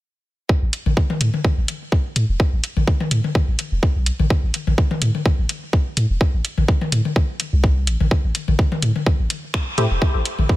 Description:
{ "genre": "minimal techno", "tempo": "126 BPM", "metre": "4/4", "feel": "swing 55% on 16ths", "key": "A minor", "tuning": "A4 = 441 Hz", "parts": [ { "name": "electronic kick drum", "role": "drums", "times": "0.5-10.6 s", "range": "none", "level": "-17 LUFS", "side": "equal", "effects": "studio reverb" }, { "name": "punchy sub bass", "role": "bass", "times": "0.6-10.5 s", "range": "E1 to A2", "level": "-19 LUFS", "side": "equal", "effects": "sidechain pumping" }, { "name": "booming analog drum machine", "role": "drums", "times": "0.7-10.4 s", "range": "finger snaps, hi-hat", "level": "-26 LUFS", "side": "equal", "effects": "studio reverb" }, { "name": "electronic toms", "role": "percussion", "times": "0.9-10.5 s", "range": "none", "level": "-26 LUFS", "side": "left 4 dB", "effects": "studio reverb, ping-pong delay" }, { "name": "wavetable chord stab", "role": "stabs", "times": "9.8-9.9 s", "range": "A3 to G4", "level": "-23 LUFS", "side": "left 1 dB", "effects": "vintage 12-bit sampler grit, ping-pong delay" } ], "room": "digital ambience", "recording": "none", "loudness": "-17 LUFS", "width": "side -16 dB against mid", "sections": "0.5-10.6 A section", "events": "none", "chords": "none" }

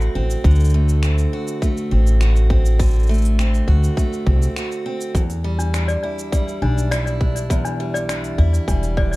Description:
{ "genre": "folktronica", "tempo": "102 BPM", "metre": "4/4", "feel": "straight", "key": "D mixolydian", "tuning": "A4 = 440 Hz", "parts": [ { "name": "picked steel-string acoustic guitar", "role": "arpeggios", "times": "0.0-9.2 s", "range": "E2 to F#4", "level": "-25 LUFS", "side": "equal", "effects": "digital delay" }, { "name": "upright bass", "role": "bass", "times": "0.0-9.2 s", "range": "E1 to E2", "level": "-17 LUFS", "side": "equal", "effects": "none" }, { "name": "organic electronic drum kit", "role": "drums", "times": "0.0-9.2 s", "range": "finger snaps, hi-hat, shaker", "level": "-31 LUFS", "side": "right 1 dB", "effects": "none" }, { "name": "electronic kick drum", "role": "drums", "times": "0.4-9.1 s", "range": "none", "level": "-20 LUFS", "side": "equal", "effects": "overdrive" }, { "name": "toy piano", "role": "second line", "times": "5.6-9.2 s", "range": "D4 to D5", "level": "-27 LUFS", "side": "left 1 dB", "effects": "digital delay" } ], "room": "little or no reverb", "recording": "dark, warm production", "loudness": "-16 LUFS", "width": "side -20 dB against mid", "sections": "0.0-9.2 A section", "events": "none", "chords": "0.0 D7; 5.2 Em7" }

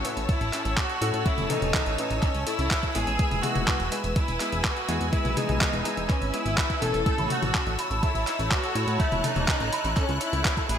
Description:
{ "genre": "italo disco", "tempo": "124 BPM", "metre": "4/4", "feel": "straight", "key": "E major", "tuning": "A4 = 440 Hz", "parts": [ { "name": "clear chamber violin section", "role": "melody", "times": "0.0-10.8 s", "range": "C#4 to A4", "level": "-30 LUFS", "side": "right 1 dB", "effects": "digital delay" }, { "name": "clear symphonic string section", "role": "sustained chords", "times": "0.0-10.8 s", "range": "B4 to F#6", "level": "-32 LUFS", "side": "left 1 dB", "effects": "none" }, { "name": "clear electric grand piano", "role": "stabs", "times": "0.0-7.3 s", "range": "A2 to B4", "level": "-33 LUFS", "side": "left 4 dB", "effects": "ensemble chorus, low-pass filter" }, { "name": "chorused synth bass", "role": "bass", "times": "0.0-10.8 s", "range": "E1 to A2", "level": "-29 LUFS", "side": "equal", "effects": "none" }, { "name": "clean 12-bit digital drum machine", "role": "drums", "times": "0.0-10.8 s", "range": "handclaps, hi-hat, toms", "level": "-30 LUFS", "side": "equal", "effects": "overdrive" }, { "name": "electronic kick drum", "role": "drums", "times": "0.3-10.7 s", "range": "none", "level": "-26 LUFS", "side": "equal", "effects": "overdrive" }, { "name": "electric guitar with an envelope filter", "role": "arpeggios", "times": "7.1-10.8 s", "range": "E3 to A4", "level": "-33 LUFS", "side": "right 4 dB", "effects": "ensemble chorus, ping-pong delay" } ], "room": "moderate lush hall reverb, RT60 1.6 s", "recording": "bright 1980s-style digital production", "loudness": "-23 LUFS", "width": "side -9 dB against mid", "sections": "0.0-10.8 A section", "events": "none", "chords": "0.0 E; 7.1 A" }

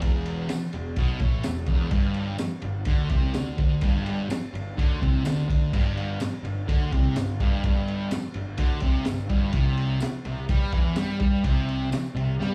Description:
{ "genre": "garage rock duo or trio", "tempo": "126 BPM", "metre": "4/4", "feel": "straight", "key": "unclear", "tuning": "A4 = 444 Hz", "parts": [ { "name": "thick fuzz guitar", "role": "riff", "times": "0.0-12.5 s", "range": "E2 to G3", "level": "-30 LUFS", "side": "equal", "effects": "distortion, slapback echo" }, { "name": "fuzz picked electric bass", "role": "bass", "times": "0.0-12.5 s", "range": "E1 to G2", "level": "-34 LUFS", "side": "equal", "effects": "overdrive" }, { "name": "crunchy breakbeat drum kit", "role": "drums", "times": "0.0-12.5 s", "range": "crash cymbal, kick drum, ride cymbal, snare drum", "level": "-28 LUFS", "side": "equal", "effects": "none" }, { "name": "tambourine", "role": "percussion", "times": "0.5-12.0 s", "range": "none", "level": "-49 LUFS", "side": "equal", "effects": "none" } ], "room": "studio ambience", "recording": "live gig heard through the venue's PA, club reverb", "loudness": "-25 LUFS", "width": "mono", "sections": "0.0-12.5 A section", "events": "drum fill 12.4", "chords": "0.0 E5; 1.9 G5; 9.5 C5" }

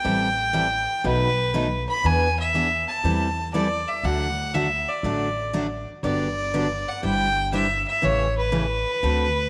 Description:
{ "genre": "country, western swing", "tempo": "120 BPM", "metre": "4/4", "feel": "swing 67% on 8ths", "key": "unclear", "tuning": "A4 = 440 Hz", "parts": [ { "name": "clear fiddle", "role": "melody", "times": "0.0-9.5 s", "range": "B4 to B5", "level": "-26 LUFS", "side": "equal", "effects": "slapback echo" }, { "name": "picked steel-string acoustic guitar", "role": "accompaniment", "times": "0.0-9.3 s", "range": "B2 to C5", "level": "-29 LUFS", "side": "equal", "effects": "none" }, { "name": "upright bass", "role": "bass", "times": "0.0-9.5 s", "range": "G1 to E2", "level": "-30 LUFS", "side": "equal", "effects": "none" } ], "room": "light reverb, studio ambience", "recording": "none", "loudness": "-23 LUFS", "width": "mono", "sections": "0.0-9.5 A section", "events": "none", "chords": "0.0 Am7; 1.0 B7; 2.0 E7; 3.0 Am7/E; 4.0 D; 6.0 Gmaj7; 7.0 Cadd9/G; 8.0 A7" }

